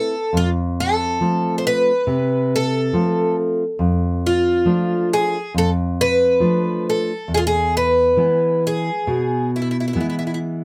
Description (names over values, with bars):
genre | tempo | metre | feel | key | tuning
fado-style ballad | 68 BPM | 4/4 | rubato | unclear | A4 = 441 Hz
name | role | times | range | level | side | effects
picked twelve-string acoustic guitar | melody | 0.0-10.4 s | E4 to C5 | -21 LUFS | equal | none
nylon-string guitar | accompaniment | 0.0-10.6 s | E2 to E4 | -23 LUFS | equal | none
room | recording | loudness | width
light reverb | close, detailed microphones | -19 LUFS | mono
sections
0.0-10.6 A section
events
none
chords
0.3 F; 3.8 Dm/F; 7.3 E